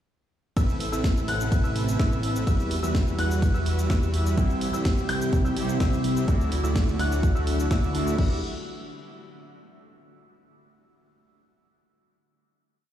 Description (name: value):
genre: EDM, festival progressive house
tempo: 126 BPM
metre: 4/4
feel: straight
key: E minor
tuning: A4 = 436 Hz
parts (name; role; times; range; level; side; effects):
- lush unison pad; sustained chords; 1.0-8.4 s; C3 to B4; -35 LUFS; equal; chorus, sidechain pumping
- warm grand piano; arpeggios; 0.6-8.4 s; E6 to G6; -35 LUFS; left 1 dB; sidechain pumping, dub echo
- dense compressed supersaw; riff; 0.6-8.4 s; G3 to G5; -31 LUFS; right 1 dB; vintage 12-bit sampler grit, sidechain pumping, dub echo
- fat analog bass; bass; 0.6-8.4 s; A1 to E2; -28 LUFS; equal; sidechain pumping
- electronic kick drum; drums; 0.6-8.3 s; none; -23 LUFS; equal; none
- house drum kit; drums; 0.6-8.3 s; cabasa, crash cymbal, hi-hat, ride cymbal, snare drum; -34 LUFS; equal; none
- mellow electric guitar; accompaniment; 4.4-8.4 s; C3 to G4; -32 LUFS; right 1 dB; sidechain pumping, dub echo
room: light reverb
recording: played on a big sound system in a bare room, large studio reverb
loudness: -22 LUFS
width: side -11 dB against mid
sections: 0.6-8.2 drop; 8.2-10.1 final chord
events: drop 0.6-8.2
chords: 0.6 Amadd9; 2.5 Emadd9; 4.4 C; 6.3 Dadd9; 8.2 Emadd9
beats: | 0.57 1.04 1.52 1.99 | 2.47 2.95 3.42 3.90 | 4.38 4.85 5.33 5.80 | 6.28 6.76 7.23 7.71 | 8.19